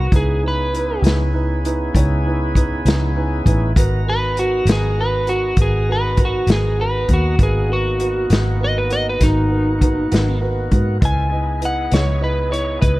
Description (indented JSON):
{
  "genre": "slow blues",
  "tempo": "66 BPM (dotted quarters)",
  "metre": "12/8",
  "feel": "straight",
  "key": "G# minor",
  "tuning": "A4 = 440 Hz",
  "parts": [
    { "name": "electric slide guitar", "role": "melody", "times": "0.0-13.0 s", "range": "D#4 to G#5", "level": "-21 LUFS", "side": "equal", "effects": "none" },
    { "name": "warm upright piano", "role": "accompaniment", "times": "0.0-13.0 s", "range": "D#4 to G#5", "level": "-26 LUFS", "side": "right 3 dB", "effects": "none" },
    { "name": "tonewheel organ", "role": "sustained chords", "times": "0.0-13.0 s", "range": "A#3 to A#5", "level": "-28 LUFS", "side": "equal", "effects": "slow rotary speaker, overdrive" },
    { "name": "vintage muted fingered electric bass", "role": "bass", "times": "0.0-13.0 s", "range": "G#1 to G#2", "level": "-19 LUFS", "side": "equal", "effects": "none" },
    { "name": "vintage drum kit", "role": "drums", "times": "0.1-13.0 s", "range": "hi-hat, kick drum, snare drum", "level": "-18 LUFS", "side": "equal", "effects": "none" }
  ],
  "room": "light reverb, small room ambience",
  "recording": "dark, warm production",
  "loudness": "-15 LUFS",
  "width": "side -18 dB against mid",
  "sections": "0.0-13.0 A section",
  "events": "electric slide guitar solo 0.0-13.0; upright piano fill 2.8-3.8",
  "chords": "0.1 C#m7; 3.8 G#m7; 11.0 C#m7"
}